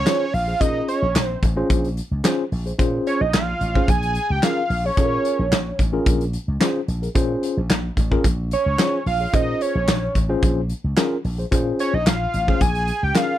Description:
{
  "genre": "early-eighties boogie funk",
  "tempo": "110 BPM",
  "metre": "4/4",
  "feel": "straight",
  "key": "Bb minor",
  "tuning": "A4 = 439 Hz",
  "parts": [
    { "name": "fat analog lead", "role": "melody", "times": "0.0-13.4 s", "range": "Db5 to Ab5", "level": "-22 LUFS", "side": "right 2 dB", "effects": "phaser" },
    { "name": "slap bass with an envelope filter", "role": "bass", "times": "0.0-13.1 s", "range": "A1 to Bb2", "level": "-24 LUFS", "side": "equal", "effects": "none" },
    { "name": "mellow tine electric piano", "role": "accompaniment", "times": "0.1-13.3 s", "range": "Db4 to Eb5", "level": "-23 LUFS", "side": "left 2 dB", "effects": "medium stereo tremolo" },
    { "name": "modern studio drum kit", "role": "drums", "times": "0.1-13.3 s", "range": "handclaps, hi-hat, kick drum, snare drum", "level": "-21 LUFS", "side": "equal", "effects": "none" }
  ],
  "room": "little or no reverb",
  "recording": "none",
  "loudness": "-18 LUFS",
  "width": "side -12 dB against mid",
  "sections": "0.0-13.4 A section",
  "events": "none",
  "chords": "0.0 Bbm9; 12.6 A7b9b13 (rootless)"
}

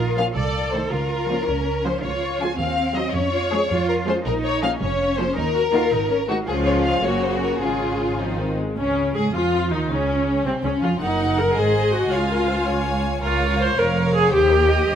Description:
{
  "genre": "quick classical-period movement for string orchestra",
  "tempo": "108 BPM (dotted quarters)",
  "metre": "6/8",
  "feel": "straight",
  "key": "Db major from 4.2 s",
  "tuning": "A4 = 444 Hz",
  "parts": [
    { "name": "rich chamber violin section", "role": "melody", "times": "0.0-15.0 s", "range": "C4 to Ab5", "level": "-25 LUFS", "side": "left 3 dB", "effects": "none" },
    { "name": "clear studio cello section", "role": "bass", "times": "0.0-15.0 s", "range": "Db2 to A4", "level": "-26 LUFS", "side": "right 2 dB", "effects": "none" },
    { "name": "rich chamber double bass section", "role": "bass", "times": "0.0-15.0 s", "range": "F1 to Ab2", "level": "-27 LUFS", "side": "right 2 dB", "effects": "none" },
    { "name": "clear chamber violin section", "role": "second line", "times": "0.2-15.0 s", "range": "C4 to Ab5", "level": "-28 LUFS", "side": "left 3 dB", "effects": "none" },
    { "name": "rich chamber viola section", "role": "accompaniment", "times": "0.2-15.0 s", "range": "Db3 to C5", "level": "-22 LUFS", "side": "equal", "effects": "none" }
  ],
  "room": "moderate concert hall reverb, RT60 1.9 s",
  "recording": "none",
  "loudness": "-18 LUFS",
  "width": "side -9 dB against mid",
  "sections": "0.0-8.8 A section; 8.8-15.0 B section",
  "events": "none",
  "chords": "0.4 Adim/C; 0.9 Bbm/Db; 2.0 Db; 2.6 Cdim/Eb; 3.1 Db/F; 4.2 Bbm7; 5.4 Ebm; 5.9 Ab7; 6.5 Db; 7.0 Gb; 7.6 Db/Ab; 8.2 Ab; 8.8 Db5; 9.3 Ebsus2; 9.9 Dbmaj7; 11.0 Ebm/Gb; 11.6 Ab; 12.1 Db; 13.2 Bbm/Db; 14.3 Eb"
}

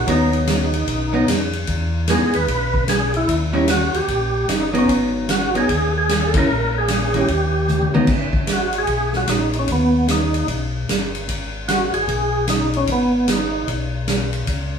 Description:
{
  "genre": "soul jazz organ trio",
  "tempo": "150 BPM",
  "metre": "4/4",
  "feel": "swing 64% on 8ths",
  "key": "G# minor",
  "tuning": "A4 = 439 Hz",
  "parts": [
    { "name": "percussive tonewheel organ", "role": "melody", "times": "0.0-13.7 s", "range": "B3 to B4", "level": "-20 LUFS", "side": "right 1 dB", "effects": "slow rotary speaker, overdrive, chorus vibrato" },
    { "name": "mellow tonewheel organ", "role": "bass", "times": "0.0-14.8 s", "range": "G1 to G#2", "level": "-23 LUFS", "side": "left 1 dB", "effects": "slow rotary speaker" },
    { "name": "archtop guitar, miked and amplified", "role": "accompaniment", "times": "0.1-8.1 s", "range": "D#3 to E4", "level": "-20 LUFS", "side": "equal", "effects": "none" },
    { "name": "swinging big-band drum kit", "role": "drums", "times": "0.1-14.6 s", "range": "crash cymbal, hi-hat, kick drum, ride cymbal, snare drum, toms", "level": "-22 LUFS", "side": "equal", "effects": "none" }
  ],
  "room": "wet studio reverb, RT60 0.8 s",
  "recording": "band playing live in one room, studio reverb",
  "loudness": "-17 LUFS",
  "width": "side -7 dB against mid",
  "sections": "0.0-8.1 A section; 8.1-14.8 A section",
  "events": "band accent 6.3; drum fill 7.7-8.1",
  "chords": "0.0 G#m7 (rootless); 1.7 Emaj7; 3.3 D#; 4.9 G#m7; 6.5 A#m7b5; 7.3 D#; 8.1 G#m"
}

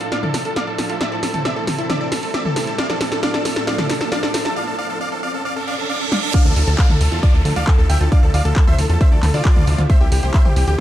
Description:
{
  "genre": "uplifting trance",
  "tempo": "135 BPM",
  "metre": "4/4",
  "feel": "straight",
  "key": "D minor",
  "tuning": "A4 = 445 Hz",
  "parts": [
    { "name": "big supersaw lead", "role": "melody", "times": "0.0-10.8 s", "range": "F4 to G5", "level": "-24 LUFS", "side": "right 1 dB", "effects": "sidechain pumping, low-pass filter, digital delay" },
    { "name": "supersaw pad", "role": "sustained chords", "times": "0.0-10.8 s", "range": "A2 to E4", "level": "-29 LUFS", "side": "equal", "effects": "sidechain pumping" },
    { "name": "analog pluck", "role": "arpeggios", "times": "0.0-10.7 s", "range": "C4 to E5", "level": "-29 LUFS", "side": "left 1 dB", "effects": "lush chorus, sidechain pumping, digital delay" },
    { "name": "punchy analog drum machine", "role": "drums", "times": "0.0-10.8 s", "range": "crash cymbal, handclaps, hi-hat, snare drum, toms", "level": "-23 LUFS", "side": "equal", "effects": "none" },
    { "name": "riser, reverse cymbal and downlifter", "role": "sound effects", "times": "2.2-9.9 s", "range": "none", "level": "-28 LUFS", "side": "right 2 dB", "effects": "none" },
    { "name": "warm grand piano", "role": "second line", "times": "6.3-10.8 s", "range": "G4 to G5", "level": "-30 LUFS", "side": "equal", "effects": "sidechain pumping" },
    { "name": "electronic kick drum", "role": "drums", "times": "6.3-10.4 s", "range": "none", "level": "-14 LUFS", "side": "equal", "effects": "none" },
    { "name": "plucky analog bass", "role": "bass", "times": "6.5-10.8 s", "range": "C2 to E2", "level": "-17 LUFS", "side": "equal", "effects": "sidechain pumping" }
  ],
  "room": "light reverb, digital ambience",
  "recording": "dark, warm production",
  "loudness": "-15 LUFS",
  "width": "side -13 dB against mid",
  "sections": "0.0-6.3 A section; 6.3-10.8 B section",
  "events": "build-up 0.0-6.3; drum fill 0.0-4.6, 6.1; riser 2.2-6.3; break 4.6-6.3; reverse cymbal 5.5-6.3; drop 6.3-10.8",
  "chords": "0.0 Dmadd9; 1.0 Am; 2.8 Dmadd9; 4.6 Dm/A; 6.3 Dmadd9; 9.9 C"
}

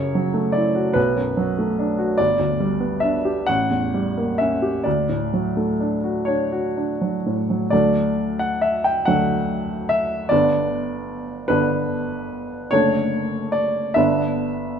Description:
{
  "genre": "classical, romantic nocturne for solo piano",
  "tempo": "41-51 BPM (dotted quarters)",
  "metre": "6/8",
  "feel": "rubato",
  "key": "D major",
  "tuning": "A4 = 440 Hz",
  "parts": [
    { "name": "warm upright piano", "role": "solo", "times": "0.0-14.8 s", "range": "F#1 to G5", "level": "-19 LUFS", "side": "equal", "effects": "none" }
  ],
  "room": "moderate recital hall reverb, RT60 1.7 s",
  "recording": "close, detailed microphones",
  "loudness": "-18 LUFS",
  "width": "side -7 dB against mid",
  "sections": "0.0-7.7 A section; 7.7-14.8 A section",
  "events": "none",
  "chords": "0.0 F#m7; 1.0 Bm7; 2.2 G; 3.5 A7b9; 4.9 D; 10.3 G; 12.7 D/F#; 14.0 G"
}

